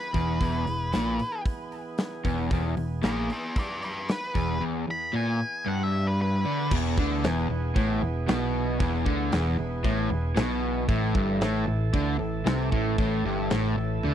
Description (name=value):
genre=blues rock power trio and southern rock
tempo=115 BPM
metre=4/4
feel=straight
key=E mixolydian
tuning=A4 = 437 Hz
part: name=octave-fuzz lead guitar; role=melody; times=0.0-6.7 s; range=G#4 to B5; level=-32 LUFS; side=left 1 dB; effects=distortion, tape echo
part: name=overdriven tonewheel organ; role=sustained chords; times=0.0-14.1 s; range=E3 to A4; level=-36 LUFS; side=right 4 dB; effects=slow rotary speaker
part: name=crunchy overdriven guitar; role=riff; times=0.1-14.1 s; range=E2 to D3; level=-27 LUFS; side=equal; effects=none
part: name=picked electric bass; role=bass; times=0.1-14.1 s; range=E1 to D2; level=-30 LUFS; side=equal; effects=none
part: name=big rock drum kit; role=drums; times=0.1-14.1 s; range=crash cymbal, hi-hat, kick drum, snare drum, toms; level=-29 LUFS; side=equal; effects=none
room=little or no reverb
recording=dry, close 1970s-style studio recording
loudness=-24 LUFS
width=side -10 dB against mid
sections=0.0-6.7 A section; 6.7-14.1 B section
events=none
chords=0.0 E; 10.9 A5